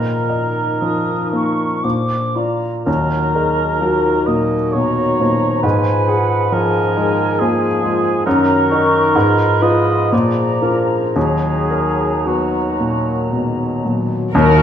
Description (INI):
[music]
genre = classical, romantic movement for piano and orchestra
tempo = 55-70 BPM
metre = 3/4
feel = rubato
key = Eb minor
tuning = A4 = 439 Hz
[part]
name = clear baby grand piano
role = melody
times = 0.0-14.6 s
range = Eb2 to Eb5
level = -17 LUFS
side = left 1 dB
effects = none
[part]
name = mellow cor anglais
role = second line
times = 0.0-14.6 s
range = Gb4 to Eb5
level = -20 LUFS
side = right 3 dB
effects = none
[part]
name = small flute group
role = second line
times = 0.0-14.6 s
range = Bb4 to Eb6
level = -24 LUFS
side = left 1 dB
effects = none
[part]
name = warm clarinet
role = second line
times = 0.0-14.6 s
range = D4 to Bb4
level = -27 LUFS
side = right 1 dB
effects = none
[part]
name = mellow bassoon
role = accompaniment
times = 0.0-14.6 s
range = Eb3 to Bb3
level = -24 LUFS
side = right 1 dB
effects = none
[part]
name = dark French horn section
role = sustained chords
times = 0.0-14.6 s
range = Eb3 to Cb5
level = -25 LUFS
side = left 4 dB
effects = none
[part]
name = muted studio violin section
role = melody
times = 14.3-14.6 s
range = Bb4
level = -19 LUFS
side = left 8 dB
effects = none
[part]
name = muted symphonic violin section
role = second line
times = 14.3-14.6 s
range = Bb4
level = -24 LUFS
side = left 3 dB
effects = none
[part]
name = muted symphonic viola section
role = accompaniment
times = 14.3-14.6 s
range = Gb4 to Bb4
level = -20 LUFS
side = right 2 dB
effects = none
[part]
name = muted studio double bass section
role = bass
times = 14.3-14.6 s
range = Eb2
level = -20 LUFS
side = right 5 dB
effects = none
[part]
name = muted symphonic cello section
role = bass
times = 14.3-14.6 s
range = none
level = barely audible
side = none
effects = none
[part]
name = timpani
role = percussion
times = 14.3-14.6 s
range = Eb3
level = -20 LUFS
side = left 1 dB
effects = none
[sound]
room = wet recital hall reverb, RT60 1.4 s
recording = minimal, uncompressed stereo recording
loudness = -14 LUFS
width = side -9 dB against mid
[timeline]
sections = 0.0-14.3 A section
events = none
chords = 0.0 Bbsus4; 1.8 Bb; 2.9 Ebm; 5.6 Fdim/Ab; 8.3 Ebm/Gb; 9.1 Fdim/Ab; 10.1 Bb7; 11.2 Ebm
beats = 0.80 1.84 | 2.87 3.81 4.74 | 5.64 6.52 7.40 | 8.26 9.15 10.12 | 11.15 12.24 13.30 | 14.33